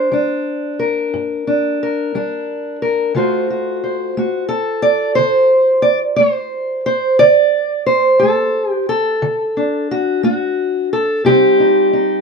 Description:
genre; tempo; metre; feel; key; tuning
acoustic country blues, solo or duo; 59 BPM (dotted quarters); 12/8; straight; unclear; A4 = 440 Hz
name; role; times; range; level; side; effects
fingerpicked steel-string acoustic guitar; solo; 0.0-12.2 s; G2 to D5; -13 LUFS; equal; none
room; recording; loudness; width
moderate studio reverb, RT60 0.5 s; dark, warm production; -13 LUFS; side -4 dB against mid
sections
0.0-12.2 A section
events
none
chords
0.0 Gm; 3.2 D7#9; 11.2 Cm

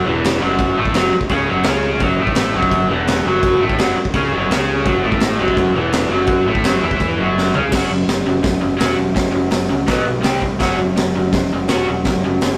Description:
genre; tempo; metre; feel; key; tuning
garage rock duo or trio; 168 BPM; 4/4; straight; unclear; A4 = 440 Hz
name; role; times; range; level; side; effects
raw garage guitar; riff; 0.0-12.6 s; E2 to F#4; -19 LUFS; equal; overdrive
growling picked electric bass; bass; 0.1-12.6 s; E1 to E2; -27 LUFS; equal; overdrive
raw garage drum kit; drums; 0.2-12.5 s; crash cymbal, hi-hat, kick drum, snare drum, toms; -21 LUFS; equal; none
room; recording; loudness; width
moderate stone room reverb, RT60 1.2 s; rough rehearsal-room recording, tube saturation; -17 LUFS; mono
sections
0.0-7.7 A section; 7.7-12.6 B section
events
drum fill 7.4-7.7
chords
0.0 F#5; 9.9 B5; 10.2 C5; 10.6 F#5

